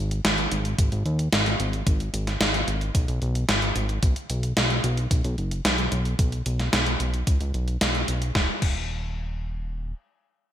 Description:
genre	synthwave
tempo	111 BPM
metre	4/4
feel	straight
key	unclear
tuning	A4 = 440 Hz
part	fat analog bass	bass	0.0-9.9 s	Eb1 to Eb2	-26 LUFS	equal	tube saturation
part	gated 80s digital drum machine	drums	0.1-8.8 s	crash cymbal, hi-hat, snare drum	-25 LUFS	equal	gated reverb, gated reverb snare
part	electronic kick drum	drums	0.8-8.8 s	none	-22 LUFS	equal	none
room	light reverb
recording	bright 1980s-style digital production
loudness	-22 LUFS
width	side -11 dB against mid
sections	0.0-8.4 A section; 8.4-10.5 B section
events	none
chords	none

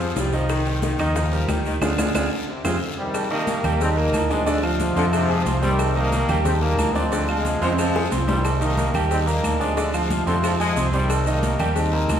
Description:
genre	latin, salsa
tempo	181 BPM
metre	4/4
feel	straight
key	C minor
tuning	A4 = 439 Hz
part	warm saxophone section	second line	0.0-5.5, 7.6-8.2, 10.3-10.8 s	C3 to Ab3	-28 LUFS	left 3 dB	none
part	bright grand piano	accompaniment	0.0-12.2 s	D3 to D6	-26 LUFS	right 2 dB	none
part	fingered electric bass	bass	0.0-12.2 s	C2 to F2	-24 LUFS	equal	none
part	congas	percussion	0.0-12.2 s	none	-32 LUFS	left 1 dB	none
part	maracas	percussion	0.0-12.2 s	none	-39 LUFS	right 5 dB	none
part	bongos and cowbell	percussion	0.2-12.2 s	none	-32 LUFS	left 6 dB	none
part	guiro	percussion	0.2-12.2 s	none	-37 LUFS	left 5 dB	none
part	timbales and agogo bells	percussion	0.2-12.2 s	none	-30 LUFS	right 2 dB	none
part	claves	percussion	0.5-12.2 s	none	-37 LUFS	equal	none
part	bright trombone section	melody	3.0-12.2 s	Ab2 to Eb4	-24 LUFS	equal	none
room	wet recital hall reverb, RT60 1.5 s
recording	recorded in a church or concert hall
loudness	-19 LUFS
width	side -9 dB against mid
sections	0.0-3.1 A section; 3.1-12.2 B section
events	band accent 1.8-3.1; drum fill 2.3-3.1, 7.6-8.4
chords	0.5 Cm; 1.2 Eb; 1.8 Ddim; 2.5 Fm; 3.1 Cm; 3.8 Eb; 4.5 Dm7b5; 5.1 Fm; 5.8 Cm; 6.5 Eb; 7.1 Dm7b5; 7.8 Fm; 8.4 Cm; 9.1 Eb; 9.8 Dm7b5; 10.4 Fm; 11.1 Cm

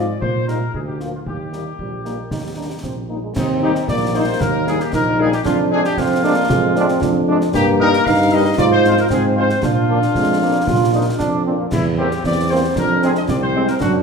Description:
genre	military-style march for wind band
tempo	115 BPM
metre	2/4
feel	straight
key	Eb major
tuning	A4 = 442 Hz
part	dark trumpet section	melody	0.0-13.9 s	Eb4 to F5	-22 LUFS	left 2 dB	none
part	warm French horn section	accompaniment	0.0-13.6 s	F3 to F4	-26 LUFS	left 6 dB	none
part	warm tuba	bass	0.0-14.0 s	Bb1 to Bb2	-20 LUFS	right 2 dB	none
part	concert bass drum, concert snare drum and clash cymbals	drums	0.2-14.0 s	none	-25 LUFS	left 1 dB	none
part	warm euphonium	second line	1.8-14.0 s	G3 to F4	-20 LUFS	right 2 dB	none
part	warm trombone section	sustained chords	3.6-13.6 s	G3 to F4	-24 LUFS	right 2 dB	none
room	wet scoring stage reverb, RT60 1.5 s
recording	minimal, uncompressed stereo recording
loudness	-15 LUFS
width	side -5 dB against mid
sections	0.0-3.4 A section; 3.4-14.0 A section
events	none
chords	0.2 Eb/Bb; 0.7 Bb/D; 1.3 Eb; 5.5 Ddim/F; 7.5 Eb/G; 8.6 Fm/Ab; 9.6 Bb; 11.7 C7/E; 12.8 Fm

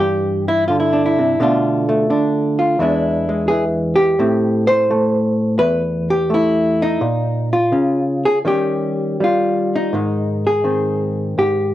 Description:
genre	solo jazz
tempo	85 BPM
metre	4/4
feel	swing 69% on 8ths, rubato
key	unclear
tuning	A4 = 439 Hz
part	hollow-body jazz guitar	solo	0.0-11.7 s	E2 to C5	-15 LUFS	equal	none
room	moderate studio reverb, RT60 0.6 s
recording	home recording on cassette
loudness	-15 LUFS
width	side -13 dB against mid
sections	0.0-11.7 A section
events	none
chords	0.0 Cmaj9; 1.4 Bm7b5; 2.8 E7#9; 4.2 Am9; 7.0 Bbm; 8.4 Eb7; 9.9 Abmaj7

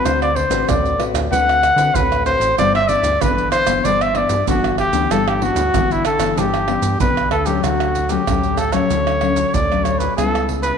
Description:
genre	samba and choro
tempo	95 BPM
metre	4/4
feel	straight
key	G major, D major from 7.6 s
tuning	A4 = 440 Hz
part	mellow trumpet	melody	0.0-10.8 s	E4 to F#5	-18 LUFS	equal	slapback echo
part	nylon-string guitar	accompaniment	0.0-10.8 s	G2 to B4	-21 LUFS	left 8 dB	none
part	round analog bass	bass	0.0-10.7 s	G1 to D3	-24 LUFS	right 1 dB	none
part	maracas, surdo, pandeiro and tamborim	percussion	0.1-10.8 s	none	-22 LUFS	right 6 dB	none
room	wet echo chamber reverb, RT60 1.6 s, small room ambience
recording	1960s-style stereo with parts hard left and right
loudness	-15 LUFS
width	side -7 dB against mid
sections	0.0-7.6 A section; 7.6-10.8 B section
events	none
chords	0.1 D6; 2.6 G6; 7.6 Dmaj7; 10.2 C#m7b5

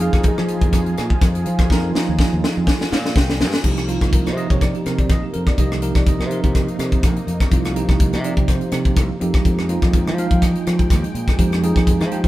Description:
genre	electric jazz fusion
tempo	124 BPM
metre	4/4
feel	swing 54% on 16ths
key	F minor, C minor from 3.6 s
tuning	A4 = 440 Hz
part	bell-like tine electric piano	accompaniment	0.0-12.3 s	F3 to Ab5	-23 LUFS	right 2 dB	fast stereo tremolo
part	lush unison pad	sustained chords	0.0-12.3 s	C3 to G5	-29 LUFS	right 1 dB	chorus
part	fingered electric bass	bass	0.0-12.3 s	Bb1 to F3	-22 LUFS	equal	none
part	tight funk drum kit	drums	0.1-12.3 s	crash cymbal, hi-hat, kick drum, rim click, snare drum	-18 LUFS	equal	none
room	light reverb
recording	band playing live in one room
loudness	-16 LUFS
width	side -16 dB against mid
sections	0.0-3.6 A section; 3.6-12.3 A section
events	drum fill 1.7-3.6; tine electric piano fill 2.7-3.6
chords	0.0 Fm7; 3.6 Cm7; 9.2 Fm9

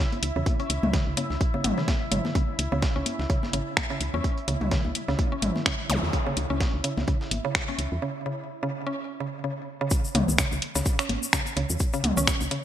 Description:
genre	minimal techno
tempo	127 BPM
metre	4/4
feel	swing 56% on 16ths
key	C# minor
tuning	A4 = 441 Hz
part	mallet-like synth pluck	riff	0.0-12.6 s	C#3 to C#4	-31 LUFS	right 1 dB	chorus, sidechain pumping, digital delay
part	bubbling stepped-filter texture	texture	0.0-8.0 s	E4 to E5	-37 LUFS	equal	chorus, built-in reverb, sidechain pumping
part	dusty soul sampler-style drum kit	drums	0.1-12.6 s	hi-hat, snare drum	-37 LUFS	right 1 dB	overdrive, high-pass filter on hats, high-pass filter on snare
part	electronic congas and toms	percussion	0.1-12.3 s	none	-30 LUFS	left 1 dB	ping-pong delay
part	woody FM bass	bass	0.2-12.5 s	G#1 to E2	-29 LUFS	equal	sidechain pumping
part	house drum kit	drums	0.2-12.6 s	finger snaps, hi-hat	-27 LUFS	left 1 dB	none
part	electronic kick drum	drums	0.5-12.4 s	none	-26 LUFS	equal	none
part	zap	sound effects	5.9-6.0 s	none	-32 LUFS	equal	none
part	tube shaker	percussion	9.9-12.5 s	none	-32 LUFS	left 3 dB	none
room	light reverb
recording	bright 1980s-style digital production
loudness	-24 LUFS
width	side -11 dB against mid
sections	0.0-9.9 A section; 9.9-12.6 B section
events	break 8.0-9.9; drop 9.9-12.6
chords	0.0 C#5

